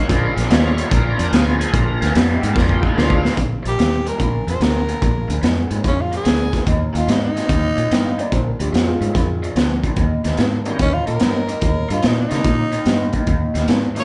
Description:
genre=electric blues shuffle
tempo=146 BPM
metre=4/4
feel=swing 67% on 8ths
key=Bb mixolydian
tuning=A4 = 440 Hz
part: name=bright tonewheel organ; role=accompaniment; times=0.0-3.2, 10.7-14.0 s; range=Eb3 to Db5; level=-29 LUFS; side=equal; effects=overdrive, chorus vibrato, slow rotary speaker
part: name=raw garage guitar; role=riff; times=0.0-14.0 s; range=Bb2 to C4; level=-27 LUFS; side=equal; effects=overdrive, phaser
part: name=fingered electric bass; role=bass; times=0.1-14.0 s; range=Bb1 to Db3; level=-24 LUFS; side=equal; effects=none
part: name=crunchy breakbeat drum kit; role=drums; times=0.1-14.0 s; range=hi-hat, kick drum, snare drum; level=-21 LUFS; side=equal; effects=none
part: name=growling tenor saxophone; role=melody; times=3.7-14.0 s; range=Db4 to Db5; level=-26 LUFS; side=equal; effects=none
part: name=dark upright piano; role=second line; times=7.9-9.7 s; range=Ab3 to G5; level=-28 LUFS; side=equal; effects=none
room=moderate large studio reverb, RT60 1.1 s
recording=band playing live in one room, nothing above 10.5 kHz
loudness=-18 LUFS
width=mono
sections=0.0-3.4 A section; 3.4-14.0 B section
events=drum fill 2.6-3.4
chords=0.1 Bb7; 3.4 Bb; 6.7 Eb; 8.3 Bb7; 10.0 Eb7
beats=| 0.10 0.51 0.92 1.32 | 1.73 2.14 2.56 2.96 | 3.38 3.79 4.20 4.61 | 5.02 5.43 5.85 6.26 | 6.67 7.08 7.50 7.91 | 8.32 8.73 9.15 9.56 | 9.97 10.38 10.80 11.21 | 11.62 12.04 12.45 12.86 | 13.27 13.69

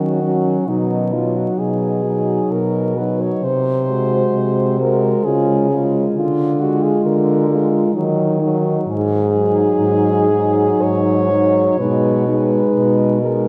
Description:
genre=classical, lyrical piece for horn quartet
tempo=65 BPM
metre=3/4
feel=rubato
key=unclear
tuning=A4 = 439 Hz
part: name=warm French horn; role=melody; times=0.0-13.5 s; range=D#4 to C#5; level=-22 LUFS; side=equal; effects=none
part: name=dark French horn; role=second line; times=0.0-13.5 s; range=C#4 to F#4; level=-24 LUFS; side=equal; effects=none
part: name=warm French horn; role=accompaniment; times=0.0-13.5 s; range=F#3 to G#3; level=-23 LUFS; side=equal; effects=none
part: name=mellow French horn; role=bass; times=0.0-13.5 s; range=G#2 to D#3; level=-22 LUFS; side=equal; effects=none
room=wet cathedral reverb, RT60 5.2 s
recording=vinyl crackle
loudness=-17 LUFS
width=mono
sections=0.0-13.5 A section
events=none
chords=0.0 D#m7; 0.7 G#m7/B; 3.4 G#7/B#; 5.2 C#; 6.2 A#7/D; 8.0 D#m; 8.9 G#5; 11.8 G#m/B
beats=| 0.68 1.59 2.51 | 3.43 4.34 5.25 | 6.15 7.05 7.96 | 8.88 9.80 10.82 | 11.79 12.76

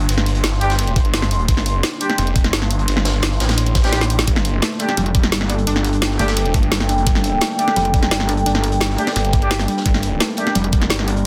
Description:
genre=dark technical drum and bass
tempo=172 BPM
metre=4/4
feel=straight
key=G minor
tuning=A4 = 441 Hz
part: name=snarling distorted saw bass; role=bass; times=0.0-10.2 s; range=F1 to A1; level=-22 LUFS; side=equal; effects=tube saturation
part: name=crunchy breakbeat drum kit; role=drums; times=0.0-11.2 s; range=hi-hat, snare drum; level=-32 LUFS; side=equal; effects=high-pass filter on hats, high-pass filter on snare, high-pass filter on room
part: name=deep dark ambient pad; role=texture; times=0.0-11.3 s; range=Bb3 to C6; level=-27 LUFS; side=equal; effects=chorus, built-in reverb, sidechain pumping
part: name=drum and bass drum kit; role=drums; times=0.1-11.1 s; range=hi-hat, snare drum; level=-24 LUFS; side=equal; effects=none
part: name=mellow brass ensemble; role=stabs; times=0.6-10.5 s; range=G3 to G4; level=-26 LUFS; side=equal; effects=delay
part: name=electronic kick drum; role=drums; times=1.0-10.8 s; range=none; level=-19 LUFS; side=equal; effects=none
part: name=dark analog pad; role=sustained chords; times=5.3-11.3 s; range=G3 to Bb4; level=-30 LUFS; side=equal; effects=chorus, phaser, sidechain pumping
part: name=unison pluck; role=arpeggios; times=4.3-11.2 s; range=G3 to G4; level=-29 LUFS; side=equal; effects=sidechain pumping, delay
part: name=metallic wobble bass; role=bass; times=5.0-11.2 s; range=F1 to G1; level=-22 LUFS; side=equal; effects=distortion, chorus
room=moderate digital room reverb, RT60 1.1 s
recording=dense, heavily limited modern master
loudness=-18 LUFS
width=mono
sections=0.0-11.3 A section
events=drum fill 3.9-4.3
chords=0.0 Gm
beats=| 0.09 0.44 0.79 1.14 | 1.48 1.83 2.18 2.53 | 2.88 3.23 3.58 3.93 | 4.28 4.62 4.97 5.32 | 5.67 6.02 6.37 6.72 | 7.07 7.42 7.76 8.11 | 8.46 8.81 9.16 9.51 | 9.86 10.21 10.55 10.90 | 11.25

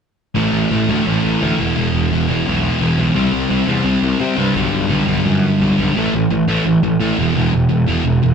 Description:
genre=punk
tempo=172 BPM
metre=4/4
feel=straight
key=unclear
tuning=A4 = 439 Hz
part: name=sludgy distorted guitar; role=riff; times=0.3-8.3 s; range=E2 to C4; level=-15 LUFS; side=equal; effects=overdrive
part: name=fuzz picked electric bass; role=bass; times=0.4-8.3 s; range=E1 to C3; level=-21 LUFS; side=left 1 dB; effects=overdrive
room=wet studio ambience, RT60 0.5 s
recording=band playing live in one room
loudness=-14 LUFS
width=side -6 dB against mid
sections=0.4-6.0 A section; 6.0-8.3 B section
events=none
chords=0.4 A5; 1.6 E5; 3.2 C5; 4.6 G/B; 6.0 A5; 7.2 E5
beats=| 0.36 0.71 1.06 1.41 | 1.76 2.10 2.46 2.81 | 3.15 3.50 3.85 4.20 | 4.55 4.90 5.25 5.60 | 5.95 6.30 6.65 7.00 | 7.35 7.70 8.05

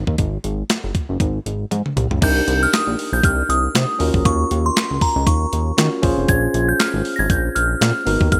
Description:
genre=early-eighties boogie funk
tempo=118 BPM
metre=4/4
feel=swing 56% on 16ths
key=C phrygian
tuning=A4 = 440 Hz
part: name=chorused synth bass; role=bass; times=0.0-8.4 s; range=F1 to Eb3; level=-23 LUFS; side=equal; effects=none
part: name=clean 12-bit digital drum machine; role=drums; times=0.1-8.4 s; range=crash cymbal, handclaps, hi-hat, kick drum, snare drum, toms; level=-22 LUFS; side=equal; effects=none
part: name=glassy synth bell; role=melody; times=2.2-8.4 s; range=Bb5 to Bb6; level=-23 LUFS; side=equal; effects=chorus
part: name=bell-like tine electric piano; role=accompaniment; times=2.2-8.4 s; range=Cb4 to C5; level=-26 LUFS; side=equal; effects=none
room=light reverb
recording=bright 1980s-style digital production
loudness=-19 LUFS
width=mono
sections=0.0-2.2 A section; 2.2-8.4 B section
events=drum fill 1.7-2.2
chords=0.0 Ab5; 2.2 Cm9; 4.0 Ebm9; 6.0 Bbm9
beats=| 0.18 0.69 1.20 1.71 | 2.22 2.73 3.24 3.75 | 4.25 4.76 5.27 5.78 | 6.29 6.80 7.30 7.81 | 8.32

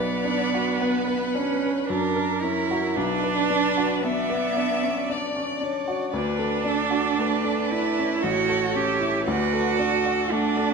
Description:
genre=classical, slow romantic movement for piano quartet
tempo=57 BPM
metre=3/4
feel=rubato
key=B minor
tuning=A4 = 440 Hz
part: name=warm violin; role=melody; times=0.0-10.7 s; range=F#4 to E5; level=-30 LUFS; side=left 9 dB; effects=none
part: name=rich cello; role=second line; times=0.0-10.7 s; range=B3 to G4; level=-24 LUFS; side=right 7 dB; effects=none
part: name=clear viola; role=accompaniment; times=0.0-10.7 s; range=A#4 to D5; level=-33 LUFS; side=right 4 dB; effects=none
part: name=warm baby grand piano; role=accompaniment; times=0.0-10.7 s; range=A1 to B4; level=-27 LUFS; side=left 2 dB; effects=none
room=wet scoring stage reverb, RT60 1.7 s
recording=none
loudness=-21 LUFS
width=side -4 dB against mid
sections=0.0-10.7 A section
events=none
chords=0.0 Bm; 1.9 F#7; 3.0 Bm; 6.1 D; 8.2 A7; 9.3 D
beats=0.79 1.88 | 2.95 4.02 5.08 | 6.13 7.18 8.21 | 9.26 10.30

